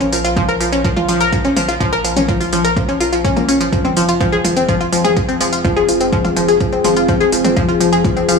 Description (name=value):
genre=melodic techno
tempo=125 BPM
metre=4/4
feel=straight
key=F minor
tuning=A4 = 439 Hz
part: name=analog pluck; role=arpeggios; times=0.0-8.3 s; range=F3 to Bb4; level=-14 LUFS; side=left 1 dB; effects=chorus, phaser, sidechain pumping, tape echo
part: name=plucky analog bass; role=bass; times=0.0-8.4 s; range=F1 to Bb1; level=-28 LUFS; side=equal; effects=sidechain pumping
part: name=deep house drum kit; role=drums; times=0.0-8.4 s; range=hi-hat, toms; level=-22 LUFS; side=left 1 dB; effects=studio reverb
part: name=electronic kick drum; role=drums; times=0.4-8.1 s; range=none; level=-19 LUFS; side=equal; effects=studio reverb
part: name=deep dark ambient pad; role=sustained chords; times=4.9-8.4 s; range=C4 to Ab4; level=-19 LUFS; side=left 2 dB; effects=chorus, built-in reverb, sidechain pumping
room=light reverb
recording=small room ambience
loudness=-12 LUFS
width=side -5 dB against mid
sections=0.0-8.4 A section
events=none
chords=0.0 Bbm; 3.7 Fm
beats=0.37 0.85 1.33 | 1.81 2.29 2.77 3.25 | 3.73 4.21 4.69 5.17 | 5.65 6.13 6.61 7.09 | 7.57 8.05